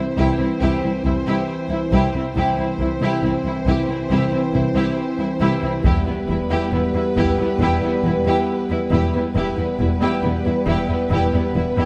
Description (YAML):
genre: cinematic, epic orchestral film score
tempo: 69 BPM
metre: 4/4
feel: straight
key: unclear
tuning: A4 = 440 Hz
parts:
  - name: warm symphonic violin section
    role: melody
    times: 0.0-11.9 s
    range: B4 to C5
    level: -31 LUFS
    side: equal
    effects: none
  - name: rich symphonic violin section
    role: second line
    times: 0.0-11.9 s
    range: B3 to G4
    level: -30 LUFS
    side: equal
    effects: none
  - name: rich symphonic viola section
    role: accompaniment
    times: 0.0-11.9 s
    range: E4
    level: -29 LUFS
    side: equal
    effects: none
  - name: mellow French horn section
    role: sustained chords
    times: 0.0-11.9 s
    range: E3 to C4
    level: -25 LUFS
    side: equal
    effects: none
  - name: rich symphonic cello section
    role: bass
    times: 0.0-11.8 s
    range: C2 to E2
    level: -26 LUFS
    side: equal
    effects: none
  - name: rich symphonic double bass section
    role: bass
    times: 0.2-11.6 s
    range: E1 to C2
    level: -26 LUFS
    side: equal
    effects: none
  - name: taiko ensemble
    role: drums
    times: 5.8-7.6 s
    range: none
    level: -26 LUFS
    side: equal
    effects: none
room: moderate scoring stage reverb, RT60 1.9 s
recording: none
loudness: -20 LUFS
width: mono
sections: 0.0-11.9 A section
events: build-up 0.0-11.9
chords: 0.0 C; 5.8 Em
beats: 0.61 1.49 | 2.36 3.23 4.11 4.98 | 5.85 6.72 7.60 8.48 | 9.36 10.23 11.11